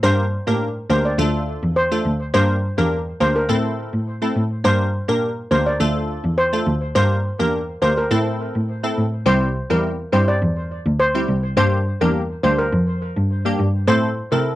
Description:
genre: dancehall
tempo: 104 BPM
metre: 4/4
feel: straight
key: G dorian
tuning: A4 = 439 Hz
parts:
  - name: steel pan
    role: melody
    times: 0.0-14.4 s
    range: Bb4 to D5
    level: -22 LUFS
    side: equal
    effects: tape echo
  - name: wavetable chord stab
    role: accompaniment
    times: 0.0-14.5 s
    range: G3 to Bb4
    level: -23 LUFS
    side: equal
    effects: none
  - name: warm cello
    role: bass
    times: 0.0-14.4 s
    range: C2 to C3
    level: -20 LUFS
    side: equal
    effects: tube saturation
room: little or no reverb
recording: dry, gritty hardware recording, cassette tape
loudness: -17 LUFS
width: side -15 dB against mid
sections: 0.0-9.3 A section; 9.3-14.6 B section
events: none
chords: 0.0 Gm; 1.2 Dm; 2.3 Gm; 3.5 Am; 4.6 Gm; 5.8 Dm; 7.0 Gm; 8.1 Am; 9.3 C; 11.6 Gm; 13.9 Am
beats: | 0.03 0.61 1.19 1.76 | 2.34 2.92 3.49 4.07 | 4.65 5.22 5.80 6.38 | 6.96 7.53 8.11 8.69 | 9.26 9.84 10.42 10.99 | 11.57 12.15 12.72 13.30 | 13.88 14.46

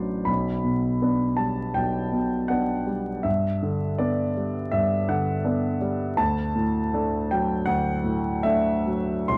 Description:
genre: classical, romantic character piece for solo piano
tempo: 81 BPM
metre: 4/4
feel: rubato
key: G major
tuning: A4 = 440 Hz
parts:
  - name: warm grand piano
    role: solo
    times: 0.0-9.4 s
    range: A1 to C6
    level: -25 LUFS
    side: equal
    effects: none
room: light reverb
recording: close, detailed microphones, vinyl crackle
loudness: -25 LUFS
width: mono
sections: 0.0-9.4 A section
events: none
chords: 0.3 G/B; 3.3 G; 6.2 D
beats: | 0.28 1.03 1.77 2.51 | 3.25 4.00 4.74 5.45 | 6.18 6.93 7.67 8.44 | 9.29

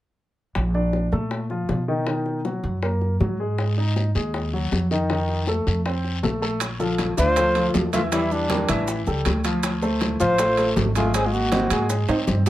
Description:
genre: Afro-Cuban jazz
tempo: 159 BPM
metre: 4/4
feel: straight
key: unclear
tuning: A4 = 442 Hz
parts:
  - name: upright bass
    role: bass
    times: 0.6-12.5 s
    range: Ab1 to Cb3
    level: -24 LUFS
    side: equal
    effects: none
  - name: bongos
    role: percussion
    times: 0.6-12.5 s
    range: none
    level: -31 LUFS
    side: left 4 dB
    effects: none
  - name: clear baby grand piano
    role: accompaniment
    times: 0.7-12.5 s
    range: D3 to Ab5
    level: -26 LUFS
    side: left 1 dB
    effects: none
  - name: guiro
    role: percussion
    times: 3.6-12.5 s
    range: none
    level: -36 LUFS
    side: left 5 dB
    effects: none
  - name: congas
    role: percussion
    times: 6.6-12.5 s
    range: none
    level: -31 LUFS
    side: right 1 dB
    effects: none
  - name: maracas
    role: percussion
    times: 6.6-12.5 s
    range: none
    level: -36 LUFS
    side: right 9 dB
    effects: none
  - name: timbales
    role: percussion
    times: 6.6-12.5 s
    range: none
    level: -29 LUFS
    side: right 4 dB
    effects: none
  - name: breathy trumpet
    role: melody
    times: 7.2-11.9 s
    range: D4 to C5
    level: -22 LUFS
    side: equal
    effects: none
  - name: warm tenor saxophone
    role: second line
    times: 7.2-11.9 s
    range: G3 to F4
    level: -28 LUFS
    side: left 3 dB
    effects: none
room: moderate club reverb, RT60 0.5 s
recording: none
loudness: -20 LUFS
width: side -14 dB against mid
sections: 0.6-6.6 A section; 6.6-12.5 B section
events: drum fill 12.1-12.5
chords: 0.6 Bbmaj7; 2.1 Bmaj7; 3.6 Ab5; 5.1 F7; 6.6 Bbmaj9; 8.1 Em7b5; 8.9 A7; 9.6 Dm7; 11.1 Ab9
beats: | 0.56 0.94 1.31 1.69 | 2.07 2.45 2.83 3.21 | 3.59 3.96 4.34 4.72 | 5.10 5.48 5.86 6.23 | 6.61 6.99 7.37 7.75 | 8.12 8.50 8.88 9.26 | 9.63 10.01 10.39 10.77 | 11.14 11.52 11.90 12.28

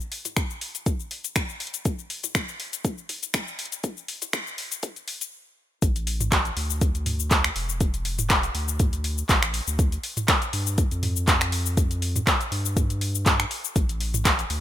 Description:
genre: afro house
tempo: 121 BPM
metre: 4/4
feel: swing 54% on 16ths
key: unclear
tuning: A4 = 445 Hz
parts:
  - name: afro-pop drum kit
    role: drums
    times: 0.0-14.6 s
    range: cabasa, finger snaps, handclaps, hi-hat, toms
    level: -25 LUFS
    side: equal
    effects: high-pass filter on hats, high-pass filter on perc, high-pass filter on toms, high-pass filter on snare
  - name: electronic kick drum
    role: drums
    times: 0.4-14.4 s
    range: none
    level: -24 LUFS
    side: equal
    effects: none
  - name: warm sub bass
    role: bass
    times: 5.8-14.6 s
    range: E1 to G2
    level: -28 LUFS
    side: equal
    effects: sidechain pumping
room: little or no reverb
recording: high-pass filter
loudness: -23 LUFS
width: side -12 dB against mid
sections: 0.0-5.8 A section; 5.8-14.6 B section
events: build-up 0.0-5.8; stop 5.3-5.8; drop 5.8-14.6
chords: none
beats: 0.37 0.86 1.36 | 1.86 2.35 2.85 3.34 | 3.84 4.34 4.83 5.33 | 5.82 6.32 6.82 7.31 | 7.81 8.30 8.80 9.29 | 9.79 10.29 10.78 11.28 | 11.77 12.27 12.77 13.26 | 13.76 14.25

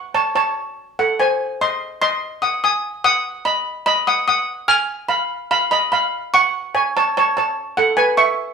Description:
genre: calypso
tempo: 146 BPM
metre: 4/4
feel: straight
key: unclear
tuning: A4 = 439 Hz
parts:
  - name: steel pan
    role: solo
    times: 0.0-8.5 s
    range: A4 to E#6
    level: -16 LUFS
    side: right 1 dB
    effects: none
room: wet studio reverb, RT60 0.8 s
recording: band playing live in one room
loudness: -16 LUFS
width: side -6 dB against mid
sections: 0.0-8.5 A section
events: none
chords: 0.0 F#m; 1.4 G#; 3.0 B; 4.7 G#m6; 6.3 F#m; 8.0 E5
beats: 0.16 0.57 0.98 | 1.39 1.80 2.21 2.62 | 3.04 3.45 3.86 4.27 | 4.68 5.10 5.51 5.92 | 6.33 6.74 7.16 7.57 | 7.98 8.39

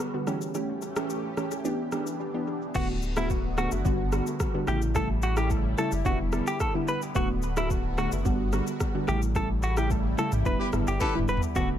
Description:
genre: afrobeats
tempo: 109 BPM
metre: 4/4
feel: straight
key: D major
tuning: A4 = 441 Hz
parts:
  - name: lush unison pad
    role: sustained chords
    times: 0.0-11.8 s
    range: C#3 to G4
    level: -37 LUFS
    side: equal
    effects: chorus, phaser
  - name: afro-pop drum kit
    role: drums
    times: 0.0-11.7 s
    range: crash cymbal, kick drum, rim click, shaker, snare drum, toms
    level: -31 LUFS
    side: equal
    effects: analog delay
  - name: glassy wavetable pluck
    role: accompaniment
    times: 0.1-11.7 s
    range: C#3 to G4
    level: -30 LUFS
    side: right 1 dB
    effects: chorus, analog delay
  - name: warm sub bass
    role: bass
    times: 2.7-11.8 s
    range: D1 to A1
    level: -29 LUFS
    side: equal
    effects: none
  - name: direct-recorded clean electric guitar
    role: melody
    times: 2.8-11.7 s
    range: E4 to B4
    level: -32 LUFS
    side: equal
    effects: analog delay
  - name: warm horn section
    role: second line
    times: 10.6-11.2 s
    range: E4 to B4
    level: -34 LUFS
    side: left 2 dB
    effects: analog delay
  - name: congas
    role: percussion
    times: 11.6-11.7 s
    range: none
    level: -36 LUFS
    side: right 2 dB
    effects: analog delay
room: little or no reverb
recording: echo-heavy mix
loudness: -25 LUFS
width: side -10 dB against mid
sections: 0.0-2.7 A section; 2.7-11.8 B section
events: band accent 9.4-11.6; drum fill 11.0-11.6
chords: 0.3 A7; 1.6 Em7; 2.7 D6; 3.9 Gmaj7; 4.7 A7; 6.1 Em7; 7.2 D6; 8.3 Gmaj7; 9.1 A7; 10.5 Em7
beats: 0.00 | 0.55 1.10 1.65 2.20 | 2.75 3.30 3.85 4.40 | 4.95 5.50 6.05 6.60 | 7.15 7.70 8.25 8.80 | 9.36 9.90 10.46 11.01 | 11.56

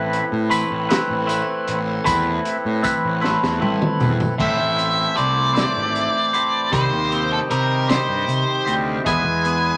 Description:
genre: psychedelic rock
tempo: 52 BPM (dotted quarters)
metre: 6/8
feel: straight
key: A minor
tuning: A4 = 440 Hz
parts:
  - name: hand-pumped harmonium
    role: sustained chords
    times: 0.0-9.8 s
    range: C4 to G#5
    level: -28 LUFS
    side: equal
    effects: none
  - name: twangy electric guitar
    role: riff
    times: 0.0-9.8 s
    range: A2 to C5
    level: -25 LUFS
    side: equal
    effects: phaser
  - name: fuzz picked electric bass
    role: bass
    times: 0.0-9.7 s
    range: G#1 to C3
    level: -27 LUFS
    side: equal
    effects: overdrive
  - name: tanpura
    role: drone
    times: 0.0-9.8 s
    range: A2 to A3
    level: -38 LUFS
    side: equal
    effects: none
  - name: crunchy breakbeat drum kit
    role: drums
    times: 0.1-9.6 s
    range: crash cymbal, hi-hat, kick drum, snare drum, toms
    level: -26 LUFS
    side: equal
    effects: none
  - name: tambourine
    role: percussion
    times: 0.5-4.3 s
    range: none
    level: -38 LUFS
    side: equal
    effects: none
  - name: octave-fuzz lead guitar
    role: melody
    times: 4.4-9.8 s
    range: A4 to G#5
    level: -23 LUFS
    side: equal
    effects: distortion
room: moderate studio reverb, RT60 0.5 s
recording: none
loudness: -20 LUFS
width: mono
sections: 0.0-4.4 A section; 4.4-9.8 B section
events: drum fill 3.2-4.4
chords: 0.0 Amadd9; 4.4 Am; 6.7 Cm; 9.0 E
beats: 0.90 | 2.06 3.23 | 4.39 5.55 | 6.72 7.88 | 9.05

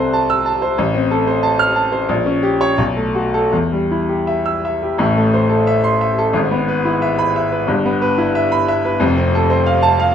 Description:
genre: classical, virtuoso piano study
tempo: 79-93 BPM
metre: 2/4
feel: rubato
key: E minor, A minor from 5.0 s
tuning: A4 = 440 Hz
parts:
  - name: clear grand piano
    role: solo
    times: 0.0-10.1 s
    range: F1 to F6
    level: -14 LUFS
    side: equal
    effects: none
room: moderate large studio reverb, RT60 0.9 s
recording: minimal, uncompressed stereo recording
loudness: -14 LUFS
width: side -8 dB against mid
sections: 0.0-5.0 A section; 5.0-10.1 B section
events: none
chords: 0.0 C6; 0.8 F/A; 2.1 A#m6; 2.8 B5; 3.5 Em; 5.0 Am; 6.3 E/G#; 7.7 Em/G; 9.0 F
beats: 0.12 | 0.77 1.43 | 2.09 2.79 | 3.54 4.27 | 4.99 5.67 | 6.35 7.02 | 7.69 8.35 | 9.01 9.66

